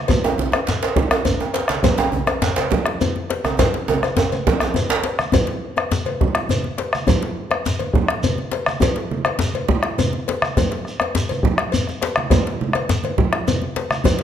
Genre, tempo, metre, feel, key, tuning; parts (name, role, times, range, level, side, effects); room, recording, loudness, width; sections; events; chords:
west african traditional, West African drum ensemble; 138 BPM (dotted quarters); 12/8; straight
bombo; percussion; 0.1-14.2 s; -22 LUFS; left 1 dB
congas; percussion; 0.1-14.2 s; -24 LUFS; right 6 dB
cowbell; percussion; 0.1-14.2 s; -26 LUFS; left 6 dB
djembe; percussion; 0.1-14.2 s; -25 LUFS; left 4 dB
shekere; percussion; 0.1-14.2 s; -29 LUFS; right 2 dB
djembe; percussion; 0.2-5.0 s; -21 LUFS; right 4 dB
moderate recital hall reverb, RT60 1.5 s; -17 LUFS; side -9 dB against mid
0.0-5.3 A section; 5.3-14.2 B section
drum fill 3.6-5.3